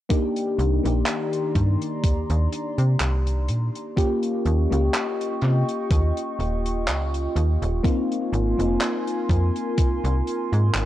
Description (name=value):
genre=vaporwave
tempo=62 BPM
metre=4/4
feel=swing 55% on 16ths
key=C minor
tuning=A4 = 440 Hz
part: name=mellow FM electric piano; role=accompaniment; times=0.1-10.9 s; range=Bb3 to G4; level=-26 LUFS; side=left 2 dB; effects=analog chorus, tape echo
part: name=warbly tape-like pad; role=sustained chords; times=0.7-10.9 s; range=Eb3 to Db6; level=-31 LUFS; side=right 2 dB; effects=chorus, built-in reverb, vintage 12-bit sampler grit
part: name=damped 70s drum kit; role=drums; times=0.1-10.9 s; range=handclaps, hi-hat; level=-29 LUFS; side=equal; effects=none
part: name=electronic kick drum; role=drums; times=0.1-10.0 s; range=none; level=-21 LUFS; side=equal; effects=none
part: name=slap-like FM bass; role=bass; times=0.6-10.9 s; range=Eb1 to C3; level=-22 LUFS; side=equal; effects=tube saturation
room=small room ambience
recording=dry, gritty hardware recording, cassette tape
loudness=-21 LUFS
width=side -13 dB against mid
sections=0.1-10.9 A section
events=none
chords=0.1 Cm9; 4.0 Eb9; 7.8 Ab69